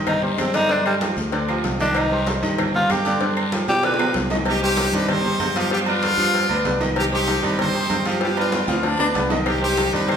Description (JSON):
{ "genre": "latin, salsa", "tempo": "192 BPM", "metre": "4/4", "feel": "straight", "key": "C harmonic minor", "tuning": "A4 = 443 Hz", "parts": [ { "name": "bright grand piano", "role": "accompaniment", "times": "0.0-10.2 s", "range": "D3 to F5", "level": "-25 LUFS", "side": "equal", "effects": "none" }, { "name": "fingered electric bass", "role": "bass", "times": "0.0-10.2 s", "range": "C2 to B2", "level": "-26 LUFS", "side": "equal", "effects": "none" }, { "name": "growling tenor saxophone", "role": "melody", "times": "0.1-4.2 s", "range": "G3 to B4", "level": "-22 LUFS", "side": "equal", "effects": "none" }, { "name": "agogo bells and timbales", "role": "percussion", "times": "0.1-10.2 s", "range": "none", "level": "-28 LUFS", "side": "right 6 dB", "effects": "none" }, { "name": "claves", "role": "percussion", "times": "0.1-4.2, 9.5-10.2 s", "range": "none", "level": "-36 LUFS", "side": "left 7 dB", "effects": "none" }, { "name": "congas", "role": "percussion", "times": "0.1-10.2 s", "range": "none", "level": "-31 LUFS", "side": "equal", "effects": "none" }, { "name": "cowbell and bongos", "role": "percussion", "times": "0.1-10.2 s", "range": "none", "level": "-29 LUFS", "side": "left 5 dB", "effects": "none" }, { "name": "guiro", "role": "percussion", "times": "0.1-10.2 s", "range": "none", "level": "-36 LUFS", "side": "left 4 dB", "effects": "none" }, { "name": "brilliant horn section", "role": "melody", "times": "4.5-10.2 s", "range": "B3 to C5", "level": "-22 LUFS", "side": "left 1 dB", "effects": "none" }, { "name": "bright baritone saxophone", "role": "second line", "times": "8.7-9.4 s", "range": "B3 to D4", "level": "-25 LUFS", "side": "left 3 dB", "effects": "none" } ], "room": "wet recital hall reverb, RT60 1.4 s", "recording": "recorded in a church or concert hall", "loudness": "-18 LUFS", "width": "side -7 dB against mid", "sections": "0.0-4.5 A section; 4.5-10.2 B section", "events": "tenor saxophone solo 0.0-4.5; drum fill 3.7-4.5, 8.2-9.5", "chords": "0.0 Cmadd9; 3.2 G7; 4.5 Cmadd9; 5.7 G7; 7.0 Cmadd9; 8.2 G7; 9.5 Cmadd9", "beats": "0.07 0.39 | 0.70 1.01 1.33 1.64 | 1.96 2.27 2.58 2.90 | 3.21 3.52 3.84 4.15 | 4.46 4.78 5.09 5.40 | 5.71 6.03 6.34 6.65 | 6.96 7.28 7.59 7.90 | 8.21 8.53 8.84 9.15 | 9.46 9.78 10.09" }